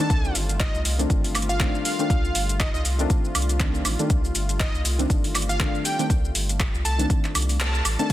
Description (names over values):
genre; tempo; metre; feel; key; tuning
deep house; 120 BPM; 4/4; swing 57% on 16ths; C dorian; A4 = 440 Hz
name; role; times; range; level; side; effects
plucky unison lead; melody; 0.0-8.1 s; Eb5 to A5; -30 LUFS; right 1 dB; cassette tape, tape echo
warm analog pad; sustained chords; 0.0-8.1 s; G3 to F4; -35 LUFS; left 2 dB; chorus, vintage 12-bit sampler grit, sidechain pumping
deep mellow chord stab; stabs; 0.0-8.1 s; Eb3 to D4; -28 LUFS; left 1 dB; chorus, sidechain pumping, tape echo
deep house drum kit; drums; 0.0-8.1 s; crash cymbal, handclaps, hi-hat, shaker, woodblock; -27 LUFS; equal; none
warm sub bass; bass; 0.1-8.1 s; G1 to C2; -26 LUFS; equal; sidechain pumping
electronic kick drum; drums; 0.1-8.1 s; none; -23 LUFS; equal; none
room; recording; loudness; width
light reverb; dense, heavily limited modern master; -20 LUFS; side -14 dB against mid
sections
0.0-8.1 A section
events
drop 0.0-8.1; kick drops out 7.6-8.1; band accent 7.6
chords
0.0 Cm69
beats
| 0.10 0.60 1.10 1.60 | 2.10 2.60 3.10 3.60 | 4.10 4.60 5.10 5.60 | 6.10 6.60 7.10 7.60 | 8.10